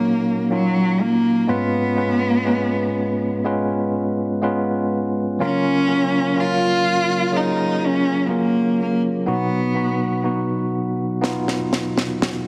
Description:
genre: pop ballad.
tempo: 61 BPM.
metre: 4/4.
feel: straight.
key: unclear.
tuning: A4 = 440 Hz.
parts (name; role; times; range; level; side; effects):
dark cello; melody; 0.0-10.2 s; Gb3 to F4; -22 LUFS; equal; none.
tine electric piano; accompaniment; 0.0-12.5 s; Ab2 to Cb5; -23 LUFS; equal; none.
snare drum; drums; 11.2-12.4 s; none; -25 LUFS; equal; none.
room: light reverb.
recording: dense, heavily limited modern master.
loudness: -20 LUFS.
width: mono.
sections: 0.0-12.5 A section.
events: drum fill 11.2-12.5.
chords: 0.0 Ebm7; 1.5 Db7; 5.4 Gbmaj7; 9.3 B.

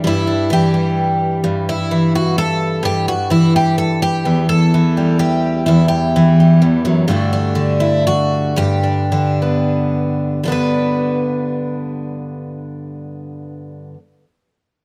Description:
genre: folk, solo fingerstyle acoustic guitar.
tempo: 81-129 BPM.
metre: 3/4.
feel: straight.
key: G major.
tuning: A4 = 441 Hz.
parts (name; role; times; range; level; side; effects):
picked twelve-string acoustic guitar; solo; 0.0-14.0 s; E2 to B4; -16 LUFS; equal; none.
room: light reverb.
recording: recorded outdoors, with no room sound.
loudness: -16 LUFS.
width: mono.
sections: 0.0-10.4 A section; 10.4-14.8 B section.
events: slowing down 7.1-10.4.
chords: 0.0 Em7/G; 1.4 Emadd11/G; 4.3 Em; 7.1 D/G; 8.6 G.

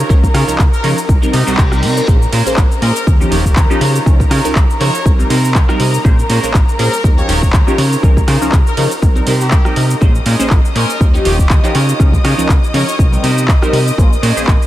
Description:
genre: filtered disco house.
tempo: 121 BPM.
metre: 4/4.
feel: swing 55% on 16ths.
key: unclear.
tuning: A4 = 436 Hz.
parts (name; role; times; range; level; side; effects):
rich studio string section; sustained chords; 0.0-14.7 s; Bb4 to Eb6; -23 LUFS; left 2 dB; sidechain pumping.
clean electric guitar; riff; 0.0-14.5 s; Db4 to G5; -23 LUFS; right 5 dB; sidechain pumping.
plucky analog bass; bass; 0.0-14.6 s; Eb1 to Db3; -16 LUFS; equal; sidechain pumping.
funky polysynth comp; accompaniment; 0.1-14.5 s; F3 to C5; -19 LUFS; equal; chorus, phaser, cassette tape, sidechain pumping.
electronic kick drum; drums; 0.1-14.6 s; none; -11 LUFS; equal; none.
punchy analog drum machine; drums; 0.1-14.7 s; handclaps, hi-hat, rim click, shaker; -21 LUFS; equal; sidechain pumping on perc, sidechain pumping on hats.
brilliant trumpet section; melody; 0.7-13.0 s; G4 to Db5; -26 LUFS; left 2 dB; none.
reverse cymbal; sound effects; 1.3-2.1 s; none; -30 LUFS; left 2 dB; none.
room: light reverb, digital ambience.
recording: none.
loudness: -10 LUFS.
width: side -14 dB against mid.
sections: 0.0-14.7 A section.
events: reverse cymbal 1.3-2.1; clean electric guitar fill 5.1-6.0.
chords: 0.0 Db69; 1.1 Cm7; 2.1 Bbm9; 3.1 Eb9; 3.8 Db69; 5.1 Cm7; 6.0 Bbm9; 7.0 Eb9; 7.8 Db69; 9.0 Cm7; 10.0 Bbm9; 11.0 Eb9; 11.8 Db69; 13.0 Cm7; 14.0 Bbm9.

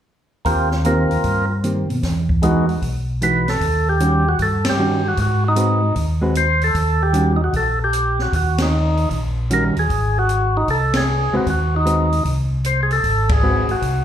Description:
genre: soul jazz organ trio.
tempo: 153 BPM.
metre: 4/4.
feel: swing 66% on 8ths.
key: unclear.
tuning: A4 = 443 Hz.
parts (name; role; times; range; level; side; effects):
percussive tonewheel organ; melody; 0.4-14.0 s; G#3 to C5; -20 LUFS; equal; slow rotary speaker, slapback echo.
mellow tonewheel organ; bass; 0.5-14.0 s; Ab1 to Cb3; -20 LUFS; equal; overdrive, chorus vibrato, slow rotary speaker.
open jazz drum kit; drums; 0.5-13.9 s; hi-hat, kick drum, ride cymbal, snare drum; -25 LUFS; equal; none.
hollow-body jazz guitar; accompaniment; 0.9-13.7 s; Eb3 to B4; -21 LUFS; right 1 dB; slapback echo.
room: light reverb, studio reverb.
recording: live gig heard through the venue's PA, club reverb.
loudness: -16 LUFS.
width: side -10 dB against mid.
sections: 0.5-3.6 A section; 3.6-14.0 B section.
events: band accent 4.6, 8.5, 10.9, 13.2.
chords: 0.5 Eb6; 2.0 Emaj9; 3.6 Eb7#9; 5.2 Ab7#9; 6.7 Eb7#9; 9.9 Ab7#9.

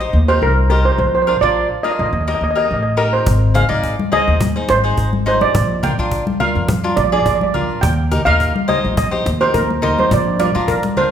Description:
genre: calypso.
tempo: 105 BPM.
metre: 4/4.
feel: swing 53% on 16ths.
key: Eb major.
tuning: A4 = 441 Hz.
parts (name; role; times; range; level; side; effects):
steel pan; melody; 0.0-11.1 s; Bb4 to G5; -17 LUFS; right 2 dB; none.
cavaquinho; accompaniment; 0.0-11.1 s; D4 to D5; -21 LUFS; left 2 dB; none.
upright bass; bass; 0.0-10.8 s; Ab1 to F2; -18 LUFS; equal; none.
cajon; drums; 3.3-11.0 s; none; -23 LUFS; equal; none.
congas; percussion; 3.5-11.1 s; none; -23 LUFS; left 2 dB; none.
room: wet recital hall reverb, RT60 1.4 s.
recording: recorded in a church or concert hall.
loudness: -13 LUFS.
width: side -9 dB against mid.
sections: 0.0-11.1 A section.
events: none.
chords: 0.0 Eb; 1.0 Bb; 2.1 Eb; 3.3 Ab; 5.5 Bb; 7.8 Eb; 10.1 Bb.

